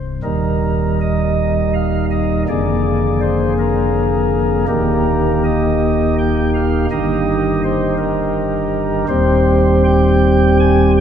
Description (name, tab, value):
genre	classical, chorale-style piece for pipe organ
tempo	82 BPM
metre	3/4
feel	rubato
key	Eb major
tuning	A4 = 440 Hz
part	pipe organ, flutes	solo	0.0-11.0 s	C1 to Ab5	-13 LUFS	equal	none
room	wet church reverb, RT60 3.8 s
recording	dark, warm production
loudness	-13 LUFS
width	side -8 dB against mid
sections	0.2-11.0 A section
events	none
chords	0.2 Eb; 2.5 Bb7/F; 4.7 Eb; 6.9 Eb/G; 9.1 Cm/Eb